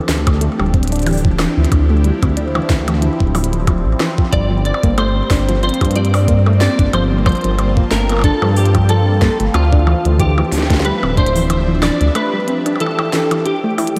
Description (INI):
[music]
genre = IDM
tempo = 92 BPM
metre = 4/4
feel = swing 56% on 16ths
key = unclear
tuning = A4 = 440 Hz
[part]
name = phased analog pad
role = sustained chords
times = 0.0-14.0 s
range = F3 to A5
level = -25 LUFS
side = equal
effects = phaser, chorus
[part]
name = soft round pluck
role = arpeggios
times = 0.1-14.0 s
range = E3 to E4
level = -23 LUFS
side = equal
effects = chorus, diffuse ambient delay
[part]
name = dark detuned saw bass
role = bass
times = 0.1-12.1 s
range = D1 to G2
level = -18 LUFS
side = equal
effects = none
[part]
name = glitchy drum kit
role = drums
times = 0.1-14.0 s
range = hi-hat, percussion blips, snare drum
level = -26 LUFS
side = equal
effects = overdrive, delay
[part]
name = electronic kick drum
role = drums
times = 0.3-11.3 s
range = none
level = -17 LUFS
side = equal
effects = none
[part]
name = clean electric guitar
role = melody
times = 4.3-14.0 s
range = F4 to D5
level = -23 LUFS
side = equal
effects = ensemble chorus, analog delay
[sound]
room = moderate lush hall reverb, RT60 2.8 s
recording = dreamy mix soaked in reverb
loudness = -15 LUFS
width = mono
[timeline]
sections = 0.0-14.0 A section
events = none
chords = 0.0 Dm11; 4.3 Gm11; 9.5 Dm11